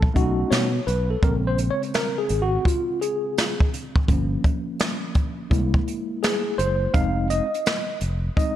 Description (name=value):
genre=hip hop, jazz-hop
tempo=84 BPM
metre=4/4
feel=swing 65% on 16ths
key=Bb minor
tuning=A4 = 440 Hz
part: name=fingered electric bass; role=bass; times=0.0-8.3 s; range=F1 to B2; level=-24 LUFS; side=equal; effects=none
part: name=jazz brush drum kit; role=drums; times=0.0-8.6 s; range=hi-hat, kick drum, snare drum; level=-22 LUFS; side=equal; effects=none
part: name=tine electric piano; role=accompaniment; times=0.1-8.6 s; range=Db3 to F5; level=-25 LUFS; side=left 1 dB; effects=overdrive, fast stereo tremolo
room=light reverb, small room ambience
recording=none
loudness=-20 LUFS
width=side -12 dB against mid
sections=0.0-1.2 A section; 1.2-8.6 A section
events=tine electric piano solo 1.2-8.6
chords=0.0 B9; 1.2 Bbm7; 4.1 Gm7b5; 5.5 Caug7; 6.9 Fm7